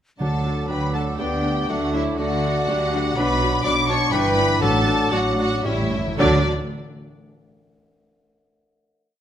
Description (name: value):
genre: quick classical-period movement for symphony orchestra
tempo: 108-126 BPM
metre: 3/4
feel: rubato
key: D major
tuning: A4 = 439 Hz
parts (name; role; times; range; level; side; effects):
- warm symphonic violin section; melody; 0.2-6.5 s; D5 to D6; -26 LUFS; left 2 dB; none
- mellow concert flute; second line; 0.2-6.5 s; C#5 to B5; -30 LUFS; left 2 dB; none
- mellow cor anglais; second line; 0.2-6.4 s; C#5 to D5; -31 LUFS; right 5 dB; none
- rich chamber violin section; second line; 0.2-6.5 s; D4 to D5; -31 LUFS; left 3 dB; none
- warm clarinet; second line; 0.2-6.4 s; E4 to D5; -30 LUFS; left 1 dB; none
- mellow bassoon; accompaniment; 0.2-6.4 s; E3 to B3; -28 LUFS; right 2 dB; none
- rich studio viola section; accompaniment; 0.2-6.5 s; E3 to D4; -30 LUFS; equal; none
- dark French horn section; sustained chords; 0.2-6.4 s; E3 to D4; -28 LUFS; left 4 dB; none
- rich chamber cello section; bass; 0.2-6.5 s; G2 to D3; -27 LUFS; right 2 dB; none
- warm chamber double bass section; bass; 0.2-6.5 s; G1 to D2; -27 LUFS; right 2 dB; none
- timpani; percussion; 0.2-0.9, 4.6-6.4 s; A2 to D3; -30 LUFS; left 1 dB; none
room: moderate recital hall reverb, RT60 1.4 s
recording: none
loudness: -18 LUFS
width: side -10 dB against mid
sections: 0.2-6.2 A section; 6.2-7.8 final chord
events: timpani fill 5.6-6.2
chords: 0.2 D; 1.2 G/D; 1.7 D; 3.2 Bm; 4.1 Em7/G; 4.6 D/A; 5.6 A7; 6.2 D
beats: | 0.20 0.70 1.20 | 1.70 2.19 2.69 | 3.17 3.65 4.13 | 4.62 5.12 5.65 | 6.19